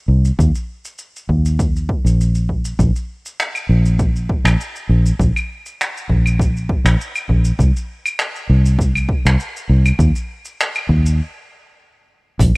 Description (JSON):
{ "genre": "sunset chillout", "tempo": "100 BPM", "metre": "4/4", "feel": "straight", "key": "unclear", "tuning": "A4 = 440 Hz", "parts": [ { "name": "fingered electric bass", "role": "bass", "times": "0.1-12.5 s", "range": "Bb1 to Eb2", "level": "-14 LUFS", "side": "equal", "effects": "none" }, { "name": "vintage brush drum kit", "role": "drums", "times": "0.2-12.5 s", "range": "claves, finger snaps, hi-hat, shaker", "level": "-23 LUFS", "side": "equal", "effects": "none" }, { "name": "electronic kick drum", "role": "drums", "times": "0.4-12.5 s", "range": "none", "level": "-19 LUFS", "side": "equal", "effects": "overdrive" } ], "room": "little or no reverb", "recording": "rough home demo mix", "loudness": "-14 LUFS", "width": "side -30 dB against mid", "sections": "0.0-12.4 A section", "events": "stop 11.2-12.4", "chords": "none" }